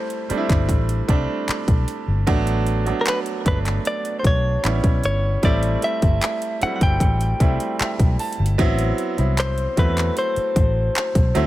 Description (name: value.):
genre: contemporary R&B.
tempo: 76 BPM.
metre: 4/4.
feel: straight.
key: A dorian.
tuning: A4 = 442 Hz.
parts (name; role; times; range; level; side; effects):
direct-recorded clean electric guitar; melody; 0.0-11.5 s; Bb4 to G5; -24 LUFS; left 1 dB; digital delay.
bright grand piano; accompaniment; 0.0-11.5 s; F#3 to A5; -25 LUFS; right 3 dB; none.
trap drum kit; drums; 0.1-11.5 s; handclaps, hi-hat, kick drum; -21 LUFS; equal; none.
vintage muted fingered electric bass; bass; 0.3-11.5 s; G1 to E2; -21 LUFS; equal; none.
room: little or no reverb.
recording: none.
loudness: -18 LUFS.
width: side -15 dB against mid.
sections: 0.0-8.6 A section; 8.6-11.5 B section.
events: grand piano fill 7.4-8.6.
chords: 0.0 D9sus4; 2.3 Gmaj7/A; 4.6 A9; 5.4 Am7/G; 8.6 Am69.